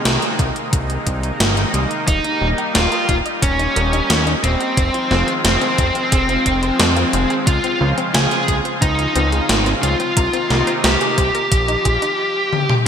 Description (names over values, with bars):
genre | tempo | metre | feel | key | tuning
synthwave | 89 BPM | 4/4 | straight | Eb mixolydian | A4 = 439 Hz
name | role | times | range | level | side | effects
lush unison pad | sustained chords | 0.0-12.2 s | C3 to F4 | -24 LUFS | equal | chorus, sidechain pumping, shimmer reverb
fat analog bass | bass | 0.1-12.0 s | Eb1 to F2 | -20 LUFS | equal | sidechain pumping
gated 80s digital drum machine | drums | 0.1-12.8 s | hi-hat, snare drum, toms | -20 LUFS | equal | gated reverb, gated reverb snare, overdrive
electronic kick drum | drums | 0.4-12.0 s | none | -19 LUFS | equal | overdrive
high-gain lead guitar | melody | 2.1-12.7 s | C4 to Ab4 | -18 LUFS | equal | distortion, ping-pong delay, shimmer reverb
analog pluck | arpeggios | 2.1-12.1 s | C4 to G5 | -28 LUFS | left 2 dB | chorus, ping-pong delay, shimmer reverb
room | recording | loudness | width
moderate lush hall reverb, RT60 2.6 s | bright 1980s-style digital production | -15 LUFS | side -8 dB against mid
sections
0.0-12.9 A section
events
drum fill 12.5-12.9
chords
0.0 Abadd9/C; 2.1 Eb; 4.8 Fm7; 7.5 Dbmaj7; 10.2 Abadd9/C; 11.5 Bb7sus4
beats
0.06 0.73 1.40 | 2.08 2.75 3.43 4.10 | 4.78 5.45 6.12 6.80 | 7.47 8.15 8.82 9.49 | 10.17 10.84 11.52 12.19